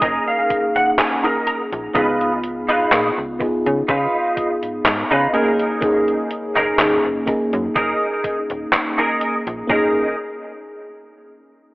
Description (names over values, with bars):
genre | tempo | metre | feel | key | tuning
vaporwave | 62 BPM | 4/4 | straight | F# major | A4 = 440 Hz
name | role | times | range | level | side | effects
FM electric piano with soft pad layer | accompaniment | 0.0-10.1 s | A#3 to G#4 | -21 LUFS | equal | tremolo, wide subtle chorus, analog delay
semi-hollow electric guitar | riff | 0.0-10.1 s | D#4 to A#5 | -20 LUFS | equal | ensemble chorus, low-pass filter, analog delay
slap-like FM bass | bass | 0.0-10.1 s | D#1 to C#3 | -25 LUFS | equal | none
detuned 8-bit digital drum machine | drums | 0.0-9.7 s | handclaps, hi-hat | -20 LUFS | equal | gated reverb
electronic kick drum | drums | 0.0-9.9 s | none | -28 LUFS | equal | none
room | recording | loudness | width
moderate plate reverb, RT60 3.6 s | cassette tape, telephone sound | -16 LUFS | side -22 dB against mid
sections
0.0-9.7 A section; 9.7-11.7 B section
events
clean electric guitar fill 0.0-2.0; filter sweep on clean electric guitar 0.0-9.7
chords
0.0 F#69; 2.0 C#9; 5.3 F#69